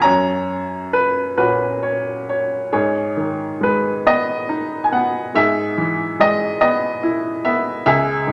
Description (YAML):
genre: classical, lyrical solo piano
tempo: 44-48 BPM (dotted quarters)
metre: 6/8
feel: rubato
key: G# minor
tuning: A4 = 440 Hz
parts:
  - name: bright upright piano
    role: solo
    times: 0.0-8.3 s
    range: C#2 to A#5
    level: -19 LUFS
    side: equal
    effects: none
room: wet recital hall reverb, RT60 1.6 s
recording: none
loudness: -19 LUFS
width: mono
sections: 0.0-2.7 A section; 2.7-8.3 B section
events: upright piano fill 1.4-2.7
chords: 0.0 F#; 2.7 G#m; 5.3 E/G#